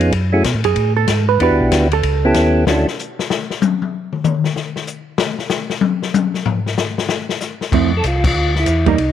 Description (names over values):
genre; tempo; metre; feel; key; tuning
soul jazz organ trio; 190 BPM; 4/4; swing 63% on 8ths; unclear; A4 = 440 Hz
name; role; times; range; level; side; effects
percussive tonewheel organ; melody; 0.0-2.9, 8.0-9.1 s; A3 to A4; -17 LUFS; equal; slow rotary speaker
mellow tonewheel organ; bass; 0.0-2.9, 7.7-9.1 s; B1 to Cb3; -17 LUFS; equal; overdrive, chorus vibrato, slow rotary speaker
open jazz drum kit; drums; 0.0-9.1 s; crash cymbal, hi-hat, kick drum, ride cymbal, snare drum, toms; -19 LUFS; left 6 dB; none
hollow-body jazz guitar; accompaniment; 0.6-2.3, 7.7-9.0 s; F3 to Cb5; -18 LUFS; right 13 dB; none
room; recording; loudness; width
light reverb, small room ambience; 1960s-style stereo with parts hard left and right; -15 LUFS; side -10 dB against mid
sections
0.0-7.7 A section; 7.7-9.1 B section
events
hollow-body jazz guitar solo 0.0-7.7; drum solo 2.7-7.7; band accent 8.2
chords
0.1 Gbmadd9; 1.4 Em7; 2.0 A7; 2.7 Dmaj7; 3.9 N.C.; 7.7 Fmaj7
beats
| 0.13 0.45 0.76 1.08 | 1.40 1.71 2.03 2.35 | 2.66 2.98 3.29 3.61 | 3.93 4.24 4.56 4.88 | 5.19 5.51 5.82 6.14 | 6.45 6.77 7.08 7.40 | 7.72 8.03 8.35 8.66 | 8.98